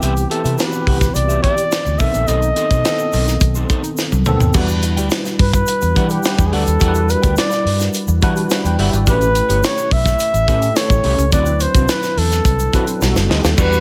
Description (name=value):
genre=polished 1980s jazz-funk pop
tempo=106 BPM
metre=4/4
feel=straight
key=E minor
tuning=A4 = 440 Hz
part: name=mellow flugelhorn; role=melody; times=0.0-13.8 s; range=G4 to E5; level=-22 LUFS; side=equal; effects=none
part: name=bell-like tine electric piano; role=accompaniment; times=0.0-13.8 s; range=D#3 to B5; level=-24 LUFS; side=equal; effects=ensemble chorus
part: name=electric guitar at the edge of break-up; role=riff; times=0.0-13.8 s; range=C4 to G5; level=-28 LUFS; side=equal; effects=analog chorus
part: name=vintage muted fingered electric bass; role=bass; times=0.0-13.8 s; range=F#1 to E3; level=-20 LUFS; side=equal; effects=none
part: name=crisp fusion drum kit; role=drums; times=0.0-13.7 s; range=crash cymbal, hi-hat, kick drum, snare drum, toms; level=-20 LUFS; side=equal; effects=gated reverb
part: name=egg shaker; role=percussion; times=0.0-13.8 s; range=none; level=-34 LUFS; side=equal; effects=none
room=small room ambience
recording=none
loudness=-16 LUFS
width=mono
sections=0.0-4.5 A section; 4.5-13.8 B section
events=drum fill 4.0-4.5, 13.0-13.6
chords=0.0 Cmaj7; 2.0 B7b9; 4.5 Em9; 9.1 A9; 11.3 D13; 13.0 B7b13